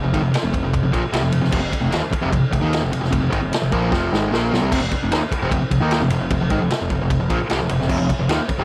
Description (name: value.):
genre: garage rock duo or trio.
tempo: 151 BPM.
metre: 4/4.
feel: straight.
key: unclear.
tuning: A4 = 440 Hz.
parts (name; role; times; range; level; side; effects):
fuzz guitar; riff; 0.0-8.6 s; F2 to Eb4; -22 LUFS; equal; distortion.
growling picked electric bass; bass; 0.0-8.6 s; F1 to Eb2; -30 LUFS; equal; overdrive.
vintage drum kit; drums; 0.1-8.6 s; crash cymbal, kick drum, ride cymbal, snare drum; -25 LUFS; equal; none.
room: light reverb.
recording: none.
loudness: -20 LUFS.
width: mono.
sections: 0.0-4.7 A section; 4.7-8.6 A section.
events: drum fill 3.9-4.7.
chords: 0.0 F5.